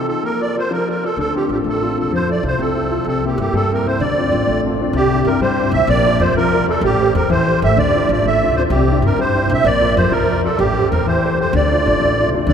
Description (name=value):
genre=celtic folk, Celtic jig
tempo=128 BPM (dotted quarters)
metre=6/8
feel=straight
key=D minor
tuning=A4 = 440 Hz
part: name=musette accordion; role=melody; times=0.0-12.5 s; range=G4 to E5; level=-17 LUFS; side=right 2 dB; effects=none
part: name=clear concert grand piano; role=accompaniment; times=0.0-12.5 s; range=C3 to D5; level=-20 LUFS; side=left 2 dB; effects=none
part: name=upright bass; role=bass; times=1.2-12.5 s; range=A1 to G2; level=-20 LUFS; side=equal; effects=none
room=wet cathedral reverb, RT60 5.3 s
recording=recorded in a church or concert hall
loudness=-14 LUFS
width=side -7 dB against mid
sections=0.0-4.9 A section; 4.9-12.5 B section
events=none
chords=0.2 Bb; 1.2 Dm7; 2.1 Fmaj7; 3.1 C7; 4.0 Dm7; 4.9 Cadd9; 5.9 Bb; 6.8 Am7; 7.8 Dmadd9; 8.7 Cadd9; 9.7 Bb; 10.6 Am7; 11.5 Dmadd9